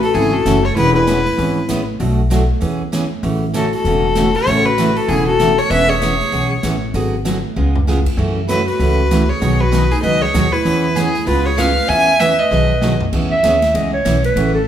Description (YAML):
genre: country, western swing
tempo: 194 BPM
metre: 4/4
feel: swing 61% on 8ths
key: E major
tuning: A4 = 440 Hz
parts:
  - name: clear fiddle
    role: melody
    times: 0.0-13.0 s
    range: G#4 to G#5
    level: -17 LUFS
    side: left 2 dB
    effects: none
  - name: breathy clarinet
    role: second line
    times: 0.0-14.7 s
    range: D#4 to E5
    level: -20 LUFS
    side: right 1 dB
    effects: none
  - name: upright bass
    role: bass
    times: 0.0-14.7 s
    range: E1 to F#2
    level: -19 LUFS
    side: equal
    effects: none
  - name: swinging big-band drum kit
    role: drums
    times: 0.0-14.5 s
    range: crash cymbal, hi-hat, kick drum, ride cymbal, snare drum, toms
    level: -26 LUFS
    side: right 1 dB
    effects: none
  - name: picked steel-string acoustic guitar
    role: accompaniment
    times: 0.1-14.6 s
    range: B2 to G#4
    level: -19 LUFS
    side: right 2 dB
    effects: none
room: moderate large studio reverb, RT60 1.2 s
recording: band playing live in one room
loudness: -13 LUFS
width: side -10 dB against mid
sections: 0.0-13.1 A section; 13.1-14.7 B section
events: drum fill 7.6-7.9, 12.5-13.1; clarinet solo 13.1-14.7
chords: 0.0 A6; 0.8 E6; 2.0 Bm7; 2.6 E6; 3.2 A6; 5.7 E6; 6.9 G#m7b5; 7.6 C#7; 8.2 F#m7; 9.4 B6; 10.7 E6; 11.3 C#7; 11.9 E6; 12.5 B6; 13.1 E6